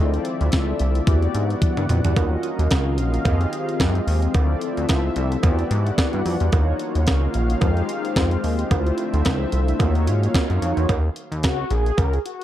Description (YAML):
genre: early-eighties boogie funk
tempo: 110 BPM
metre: 4/4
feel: swing 56% on 16ths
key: unclear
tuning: A4 = 438 Hz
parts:
  - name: mellow synth brass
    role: accompaniment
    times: 0.0-12.4 s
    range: Ab3 to A5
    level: -26 LUFS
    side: left 2 dB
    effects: chorus
  - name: lush unison pad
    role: sustained chords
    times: 0.0-10.9 s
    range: D3 to F#5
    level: -31 LUFS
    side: equal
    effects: chorus
  - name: chorused synth bass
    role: bass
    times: 0.0-12.2 s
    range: Bb1 to Ab2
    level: -21 LUFS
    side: equal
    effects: none
  - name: clean 12-bit digital drum machine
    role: drums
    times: 0.1-12.4 s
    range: hi-hat, kick drum, snare drum, toms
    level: -22 LUFS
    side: equal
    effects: none
  - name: cowbell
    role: percussion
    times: 2.2-12.1 s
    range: none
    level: -33 LUFS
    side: right 8 dB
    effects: none
room: digital ambience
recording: dark, warm production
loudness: -18 LUFS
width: side -12 dB against mid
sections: 0.0-10.9 A section; 10.9-12.4 B section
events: drum fill 1.6-2.2; analog polysynth solo 10.9-12.4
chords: 0.0 Dm9; 1.1 Em9; 2.2 Ebm9; 3.3 Fm9; 4.3 Dm9; 5.4 Em9; 6.5 Ebm9; 7.6 Fm9; 8.7 Dm9; 9.8 Ebm9; 10.9 Ebm7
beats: 0.53 1.07 1.62 | 2.16 2.71 3.25 3.80 | 4.35 4.89 5.44 5.98 | 6.53 7.07 7.62 8.16 | 8.71 9.26 9.80 10.35 | 10.89 11.44 11.98